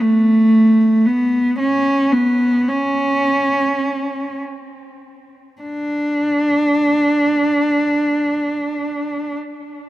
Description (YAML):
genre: pop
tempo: free time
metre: none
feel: none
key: unclear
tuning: A4 = 440 Hz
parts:
  - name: dark cello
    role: melody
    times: 0.0-9.4 s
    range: A3 to D4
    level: -15 LUFS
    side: equal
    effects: none
room: moderate plate reverb, RT60 3.5 s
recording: none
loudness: -14 LUFS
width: side -15 dB against mid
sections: 0.0-5.6 A section; 5.6-9.9 B section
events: slowing down 0.0-5.6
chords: none